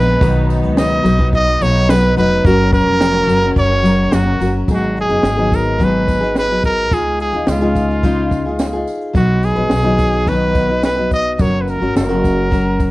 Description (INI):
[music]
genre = acoustic pop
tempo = 107 BPM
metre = 4/4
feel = straight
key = F# major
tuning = A4 = 442 Hz
[part]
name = brilliant trumpet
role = melody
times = 0.0-12.9 s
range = E#4 to D#5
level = -17 LUFS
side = right 1 dB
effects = none
[part]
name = picked steel-string acoustic guitar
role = accompaniment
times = 0.0-12.9 s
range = G#2 to Cb5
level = -17 LUFS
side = left 2 dB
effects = none
[part]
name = clear studio string section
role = sustained chords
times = 0.0-4.7 s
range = F3 to A#4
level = -27 LUFS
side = right 1 dB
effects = none
[part]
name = upright bass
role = bass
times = 0.0-12.9 s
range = E#1 to D#2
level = -19 LUFS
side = equal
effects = none
[part]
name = compact cocktail drum kit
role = drums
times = 0.1-12.9 s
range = kick drum, shaker, snare drum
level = -18 LUFS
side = equal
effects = none
[part]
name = tambourine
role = percussion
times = 0.2-12.9 s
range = none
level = -42 LUFS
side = right 6 dB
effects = none
[sound]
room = light reverb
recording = worn, warbling old tape, cassette tape, warbly pitch drift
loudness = -12 LUFS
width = side -18 dB against mid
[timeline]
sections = 0.0-4.7 A section; 4.7-12.9 B section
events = none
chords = 0.2 B; 2.4 F#; 4.7 G#m7; 6.9 C#add9; 9.2 B; 11.4 F#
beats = | 0.21 0.77 1.33 1.89 | 2.44 3.00 3.56 4.12 | 4.68 5.24 5.80 6.36 | 6.92 7.48 8.04 8.60 | 9.16 9.72 10.28 10.84 | 11.40 11.96 12.52